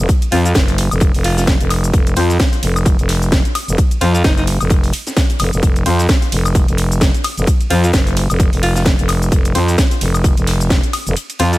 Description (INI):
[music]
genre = bass house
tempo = 130 BPM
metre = 4/4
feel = swing 57% on 16ths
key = unclear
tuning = A4 = 440 Hz
[part]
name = growling FM bass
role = bass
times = 0.0-11.6 s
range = F1 to F2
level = -15 LUFS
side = equal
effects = sidechain pumping
[part]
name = electronic kick drum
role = drums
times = 0.1-10.8 s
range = none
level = -14 LUFS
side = equal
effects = overdrive
[part]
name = gated 80s drum kit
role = drums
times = 0.1-11.5 s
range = hi-hat, snare drum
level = -29 LUFS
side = left 3 dB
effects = high-pass filter on hats, high-pass filter on snare, high-pass filter on room
[part]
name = house drum kit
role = drums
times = 0.1-11.6 s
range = hi-hat, ride cymbal, shaker, snare drum, woodblock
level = -21 LUFS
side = equal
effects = overdrive
[part]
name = bright alto saxophone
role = melody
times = 0.3-4.4, 7.7-11.6 s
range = Eb4 to F4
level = -22 LUFS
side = equal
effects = ping-pong delay
[part]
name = percussive organ stab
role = stabs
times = 0.3-11.5 s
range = F3 to C5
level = -23 LUFS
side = left 4 dB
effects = chorus, sidechain pumping, ping-pong delay
[sound]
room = digital ambience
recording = none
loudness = -12 LUFS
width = side -18 dB against mid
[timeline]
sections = 0.0-11.6 A section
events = kick drops out 11.2-11.6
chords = 0.0 F5